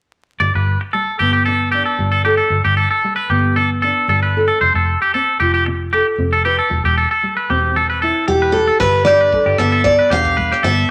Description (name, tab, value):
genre	highlife guitar band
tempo	114 BPM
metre	4/4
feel	straight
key	G mixolydian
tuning	A4 = 436 Hz
part	nylon-string guitar	accompaniment	0.4-10.9 s	G2 to B4	-24 LUFS	equal	none
part	twangy electric guitar	arpeggios	0.4-10.9 s	G4 to D5	-19 LUFS	equal	spring reverb
part	fingered electric bass	bass	0.4-10.8 s	E1 to G1	-22 LUFS	equal	none
part	picked steel-string acoustic guitar	melody	8.3-10.9 s	G4 to F5	-16 LUFS	equal	none
part	tight funk drum kit	drums	8.8-10.8 s	crash cymbal, hi-hat, kick drum, rim click	-29 LUFS	equal	none
room	moderate studio reverb, RT60 0.7 s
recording	vinyl crackle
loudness	-16 LUFS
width	mono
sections	0.4-8.8 A section; 8.8-10.9 B section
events	none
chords	0.4 Gadd9; 4.6 F; 6.7 C/E; 8.8 Gadd9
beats	| 0.42 0.94 1.47 1.99 | 2.52 3.04 3.57 4.09 | 4.62 5.14 5.66 6.19 | 6.71 7.24 7.76 8.28 | 8.81 9.33 9.86 10.38 | 10.90